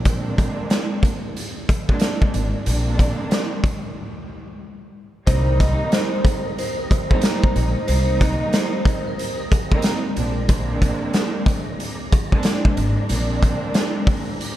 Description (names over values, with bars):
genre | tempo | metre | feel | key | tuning
hip hop, boom-bap hip-hop | 92 BPM | 4/4 | swing 63% on 16ths | C minor | A4 = 441 Hz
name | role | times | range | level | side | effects
muted studio string section | accompaniment | 0.0-14.6 s | G3 to Eb4 | -27 LUFS | right 2 dB | cassette tape, high-pass filter, low-pass filter
upright bass | bass | 0.0-13.6 s | Ab1 to C2 | -21 LUFS | equal | none
raw garage drum kit | drums | 0.1-14.6 s | hi-hat, kick drum, snare drum | -20 LUFS | equal | none
vibraphone with soft mallets | melody | 5.3-10.5 s | Bb4 to Eb5 | -28 LUFS | right 1 dB | high-pass filter, low-pass filter, digital delay
tonewheel organ | sustained chords | 5.3-14.6 s | C4 to Bb5 | -35 LUFS | equal | chorus vibrato, slow rotary speaker, high-pass filter, low-pass filter
room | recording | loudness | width
little or no reverb | dark, warm production | -18 LUFS | side -13 dB against mid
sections
0.0-5.3 A section; 5.3-14.6 B section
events
break 4.0-5.3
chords
0.0 Bb9; 5.3 Cm7; 10.2 Bb9